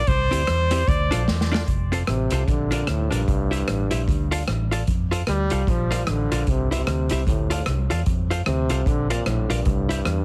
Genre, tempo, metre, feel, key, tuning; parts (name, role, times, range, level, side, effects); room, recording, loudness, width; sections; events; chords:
ska; 150 BPM; 4/4; swing 60% on 8ths; F major; A4 = 440 Hz
clear trumpet; melody; 0.0-1.3 s; C5 to D5; -29 LUFS; equal; tube saturation, dub echo
vintage muted fingered electric bass; bass; 0.0-10.2 s; F1 to F2; -26 LUFS; equal
vintage drum kit; drums; 0.1-10.2 s; hi-hat, kick drum, rim click, snare drum; -28 LUFS; equal
hollow-body jazz guitar; accompaniment; 0.3-10.0 s; C4 to F5; -29 LUFS; equal
warm trombone; melody; 2.1-10.2 s; G2 to G3; -29 LUFS; equal; dub echo
light reverb; heavily compressed radio sound; -22 LUFS; mono
0.0-1.7 A section; 1.7-10.2 B section
trumpet solo 0.0-1.7; drum fill 1.3-1.7
0.1 C; 0.9 Dm; 1.7 F; 2.5 Bb; 3.3 C; 4.1 Dm; 4.9 F; 5.7 Bb; 6.5 C; 7.3 Dm; 8.1 F; 8.9 Bb; 9.7 C